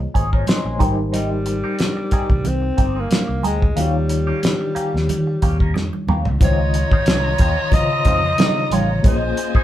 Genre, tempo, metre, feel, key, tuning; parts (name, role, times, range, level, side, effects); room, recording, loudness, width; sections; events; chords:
lush 1970s-style soul; 91 BPM; 4/4; swing 54% on 16ths; A4 = 440 Hz
reed electric piano; accompaniment; 0.0-9.6 s; Db3 to C6; -25 LUFS; left 3 dB; fast tremolo
direct-recorded clean electric guitar; riff; 0.0-9.6 s; F3 to Bb4; -27 LUFS; equal; wah, phaser
fingered electric bass; bass; 0.0-9.3 s; G1 to Eb3; -22 LUFS; equal
cloth-damped thuddy drum kit; drums; 0.2-9.6 s; hi-hat, kick drum, snare drum, toms; -18 LUFS; equal
congas; percussion; 0.5-9.2 s; -26 LUFS; right 4 dB
growling alto saxophone; melody; 1.2-9.6 s; G3 to Eb5; -23 LUFS; left 1 dB
dark symphonic violin section; second line; 6.4-9.6 s; F4 to Bb5; -28 LUFS; right 1 dB
dark trombone section; stabs; 8.1-8.9 s; Ab2 to Eb4; -26 LUFS; right 2 dB
moderate studio ambience, RT60 0.5 s; band playing live in one room; -16 LUFS; side -12 dB against mid
0.0-6.4 A section; 6.4-9.6 B section
drum fill 5.8-6.4
0.0 Bbm11; 0.8 Abmaj7; 3.8 Eb7; 6.4 Dbmaj9; 9.0 Bbm11